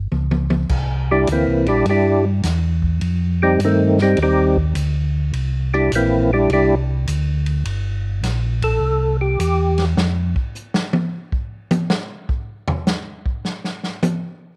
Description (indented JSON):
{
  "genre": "soul jazz organ trio",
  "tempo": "104 BPM",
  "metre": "4/4",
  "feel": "swing 66% on 8ths",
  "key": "C mixolydian",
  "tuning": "A4 = 440 Hz",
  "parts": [
    { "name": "mellow tonewheel organ", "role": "bass", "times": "0.0-10.3 s", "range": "G1 to G2", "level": "-21 LUFS", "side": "equal", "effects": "chorus vibrato, slow rotary speaker" },
    { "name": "vintage drum kit", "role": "drums", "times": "0.1-14.2 s", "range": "crash cymbal, hi-hat, kick drum, ride cymbal, snare drum, toms", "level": "-26 LUFS", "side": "equal", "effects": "none" },
    { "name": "percussive tonewheel organ", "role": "melody", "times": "1.1-9.8 s", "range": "Eb3 to A4", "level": "-19 LUFS", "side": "equal", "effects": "slow rotary speaker, chorus vibrato" }
  ],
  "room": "light reverb, small room ambience",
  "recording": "none",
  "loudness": "-19 LUFS",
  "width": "mono",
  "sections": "0.7-14.6 A section",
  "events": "drum fill 0.1-0.7; tonewheel organ solo 0.7-14.6; drum solo 10.0-14.6",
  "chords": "0.0 N.C.; 0.7 C9; 3.0 F9; 5.3 C9; 7.7 Gm; 8.8 C; 10.0 N.C."
}